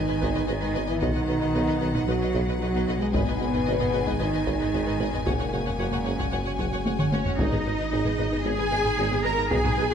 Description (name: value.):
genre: cinematic, hybrid orchestral and electronic film score.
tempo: 113 BPM.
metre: 4/4.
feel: straight.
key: G# minor.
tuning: A4 = 440 Hz.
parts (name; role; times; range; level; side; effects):
rich studio violin section; melody; 0.0-9.9 s; F#4 to G#5; -36 LUFS; left 7 dB; none.
dark French horn section; sustained chords; 0.0-9.9 s; A#3 to A#4; -30 LUFS; equal; none.
dark analog pad; sustained chords; 0.0-9.9 s; F#3 to B4; -34 LUFS; right 2 dB; chorus, phaser.
thumb-piano-like synth pluck; arpeggios; 0.0-9.9 s; F#3 to B4; -38 LUFS; left 5 dB; none.
punchy sub bass; bass; 0.0-9.9 s; F#1 to B1; -34 LUFS; left 1 dB; none.
warm symphonic cello section; bass; 0.0-9.9 s; A#2 to A#4; -30 LUFS; right 1 dB; none.
warm symphonic violin section; second line; 0.1-9.9 s; C#5 to A#5; -34 LUFS; left 2 dB; none.
warm symphonic viola section; accompaniment; 0.1-9.9 s; B3 to C#5; -36 LUFS; right 2 dB; none.
warm symphonic double bass section; bass; 0.1-9.9 s; F#1 to B1; -33 LUFS; right 3 dB; none.
warm tuba; bass; 0.2-9.8 s; F#1 to B1; -33 LUFS; right 4 dB; none.
solo taiko drums; drums; 0.2-9.9 s; none; -30 LUFS; left 1 dB; none.
room: moderate scoring stage reverb, RT60 1.5 s.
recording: none.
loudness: -23 LUFS.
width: side -8 dB against mid.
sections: 0.0-7.4 A section; 7.4-9.9 B section.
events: drum fill 6.9-7.4.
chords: 0.0 G#m; 1.0 B; 3.1 G#m; 5.3 F#add9; 7.4 G#m.